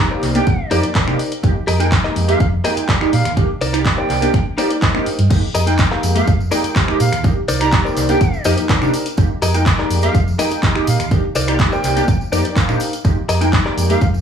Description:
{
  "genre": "filtered disco house",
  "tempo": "124 BPM",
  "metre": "4/4",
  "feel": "straight",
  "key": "F dorian",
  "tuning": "A4 = 443 Hz",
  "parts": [
    { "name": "bright reedy concert flute", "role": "melody", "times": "0.0-14.1 s", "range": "F5 to Bb5", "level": "-26 LUFS", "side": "right 2 dB", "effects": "vintage 12-bit sampler grit, sidechain pumping, dub echo" },
    { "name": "funky polysynth comp", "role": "accompaniment", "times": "0.0-14.0 s", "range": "Ab3 to G5", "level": "-20 LUFS", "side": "right 1 dB", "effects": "chorus, phaser, vintage 12-bit sampler grit, sidechain pumping" },
    { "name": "hollow-body short-scale fingered electric bass", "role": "bass", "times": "0.0-14.2 s", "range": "C2 to C3", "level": "-19 LUFS", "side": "right 1 dB", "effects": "sidechain pumping" },
    { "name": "direct-recorded clean electric guitar", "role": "riff", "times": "0.1-14.0 s", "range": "Eb4 to F5", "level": "-23 LUFS", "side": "left 3 dB", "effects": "spring reverb, sidechain pumping" },
    { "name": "punchy analog drum machine", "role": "drums", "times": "0.2-14.1 s", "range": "crash cymbal, finger snaps, handclaps, hi-hat", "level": "-23 LUFS", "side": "equal", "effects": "sidechain pumping on hats, sidechain pumping on cymbals" },
    { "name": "electronic kick drum", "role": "drums", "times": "0.5-14.1 s", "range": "none", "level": "-17 LUFS", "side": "equal", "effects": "none" },
    { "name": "tambourine", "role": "percussion", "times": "5.3-14.2 s", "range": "none", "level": "-32 LUFS", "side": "right 3 dB", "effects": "sidechain pumping on perc" }
  ],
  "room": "light reverb",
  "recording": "studio ambience",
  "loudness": "-14 LUFS",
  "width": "side -8 dB against mid",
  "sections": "0.0-14.2 A section",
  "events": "none",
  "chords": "0.0 Cm9; 1.4 Fm11; 3.4 Cm9; 5.3 Fm11; 7.2 Cm9; 9.2 Fm11; 11.1 Cm9; 13.0 Fm11"
}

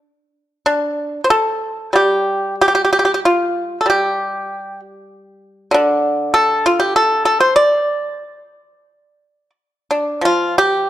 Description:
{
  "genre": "chinese traditional",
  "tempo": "86-99 BPM",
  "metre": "4/4",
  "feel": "rubato",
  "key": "D yu mode",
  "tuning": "A4 = 440 Hz",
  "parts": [
    { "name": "pipa", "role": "solo", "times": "0.7-10.9 s", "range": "D3 to D5", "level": "-14 LUFS", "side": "equal", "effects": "none" }
  ],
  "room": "moderate recital hall reverb, RT60 1.6 s",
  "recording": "dark, warm production",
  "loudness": "-14 LUFS",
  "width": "side -13 dB against mid",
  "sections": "0.0-10.2 A section",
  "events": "none",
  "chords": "none"
}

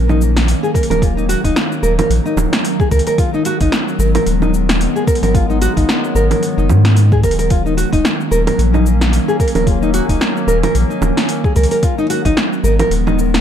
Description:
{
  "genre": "organic downtempo",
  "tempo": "111 BPM",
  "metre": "4/4",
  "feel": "swing 57% on 16ths",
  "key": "Eb minor",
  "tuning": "A4 = 440 Hz",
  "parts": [
    { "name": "warbly tape-like pad", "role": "sustained chords", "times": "0.0-13.4 s", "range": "Eb3 to Eb4", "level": "-20 LUFS", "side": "equal", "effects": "chorus, built-in reverb, phaser, sidechain pumping" },
    { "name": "round analog bass", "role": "bass", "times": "0.0-13.4 s", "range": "Eb1 to Ab2", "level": "-15 LUFS", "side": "equal", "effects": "sidechain pumping" },
    { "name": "nylon-string guitar", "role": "arpeggios", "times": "0.1-13.2 s", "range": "Eb4 to Bb4", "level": "-18 LUFS", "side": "equal", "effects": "ping-pong delay" },
    { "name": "deep house drum kit", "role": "drums", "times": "0.1-13.4 s", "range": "congas, hi-hat, shaker, snare drum", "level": "-19 LUFS", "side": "right 1 dB", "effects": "overdrive" },
    { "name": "electronic kick drum", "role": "drums", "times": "0.8-12.3 s", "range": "none", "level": "-16 LUFS", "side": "equal", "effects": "none" }
  ],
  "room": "light reverb",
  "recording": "dark, warm production",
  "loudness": "-12 LUFS",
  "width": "side -9 dB against mid",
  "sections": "0.0-13.4 A section",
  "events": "none",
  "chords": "0.0 Ebm7; 3.2 Abm7; 7.5 Ebm7; 11.8 Abm7"
}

